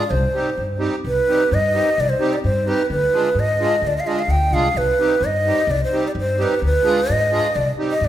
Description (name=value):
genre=balkan folk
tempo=129 BPM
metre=2/4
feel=straight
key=C harmonic minor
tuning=A4 = 440 Hz
part: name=breathy ney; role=melody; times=0.0-8.1 s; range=B4 to G5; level=-18 LUFS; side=right 1 dB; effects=none
part: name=accordion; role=accompaniment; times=0.0-7.9 s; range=G3 to Ab4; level=-24 LUFS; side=right 2 dB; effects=light tremolo tuning
part: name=upright bass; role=bass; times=0.1-8.1 s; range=C2 to Ab2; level=-23 LUFS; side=equal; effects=none
room=moderate recital hall reverb, RT60 1.6 s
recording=minimal, uncompressed stereo recording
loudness=-16 LUFS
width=side -12 dB against mid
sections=0.0-1.0 A section; 1.0-8.1 B section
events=none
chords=0.1 Cm; 2.9 Ddim; 4.8 Cm; 6.6 Ddim; 7.5 Cm